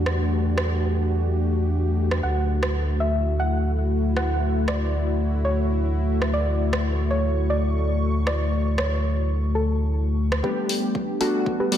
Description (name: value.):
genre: deep house.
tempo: 117 BPM.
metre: 4/4.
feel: swing 54% on 16ths.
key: unclear.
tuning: A4 = 441 Hz.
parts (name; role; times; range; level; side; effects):
dark analog pad; sustained chords; 0.0-11.8 s; G3 to C#6; -27 LUFS; left 2 dB; chorus, sidechain pumping.
sub bass with octave; bass; 0.0-10.4 s; D2 to E2; -23 LUFS; equal; sidechain pumping.
deep house drum kit; drums; 0.1-11.8 s; hi-hat, rim click; -30 LUFS; right 1 dB; overdrive, high-pass filter on snare, high-pass filter on hats, high-pass filter on room.
soft round pluck; melody; 2.2-11.8 s; F#4 to F#5; -29 LUFS; equal; chorus, ping-pong delay.
warm analog keys; stabs; 10.4-11.8 s; G3 to G4; -23 LUFS; left 1 dB; chorus, sidechain pumping, low-pass filter.
electronic kick drum; drums; 10.4-11.6 s; none; -31 LUFS; right 1 dB; overdrive, high-pass filter on kick, high-pass filter on room.
room: moderate lush hall reverb, RT60 1.9 s, digital ambience.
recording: dreamy mix soaked in reverb.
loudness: -21 LUFS.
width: side -10 dB against mid.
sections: 0.0-10.4 A section; 10.4-11.8 B section.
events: build-up 10.4-11.8.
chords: 0.0 Em11; 2.2 Dmaj9; 10.4 Em11.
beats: | 0.18 0.69 1.21 1.72 | 2.23 2.75 3.26 3.77 | 4.28 4.80 5.31 5.82 | 6.33 6.85 7.36 7.87 | 8.39 8.90 9.41 9.93 | 10.44 10.95 11.46.